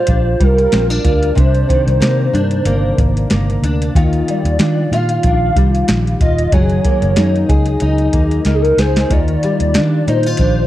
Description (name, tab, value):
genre	indie pop, bedroom pop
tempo	93 BPM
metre	4/4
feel	swing 55% on 16ths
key	Eb major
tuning	A4 = 441 Hz
part	hollow clarinet-like synth lead	melody	0.0-10.7 s	Ab4 to F5	-19 LUFS	equal	ensemble chorus, tape echo
part	fingerpicked plugged-in steel-string acoustic guitar	accompaniment	0.0-10.7 s	C3 to Ab4	-18 LUFS	left 1 dB	ensemble chorus, warbly pitch drift
part	vintage muted fingered electric bass	bass	0.1-10.7 s	Eb1 to Eb3	-16 LUFS	equal	none
part	soft vintage rhythm box	drums	0.1-10.6 s	hi-hat, kick drum, snare drum	-17 LUFS	equal	overdrive
room	little or no reverb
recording	dry, close 1970s-style studio recording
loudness	-12 LUFS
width	side -14 dB against mid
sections	0.0-10.7 A section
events	drum fill 8.5-9.1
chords	0.0 Ebmaj9 (rootless); 1.4 Cm9; 3.9 Ebmaj9; 6.5 Gb69; 9.1 Ebmaj9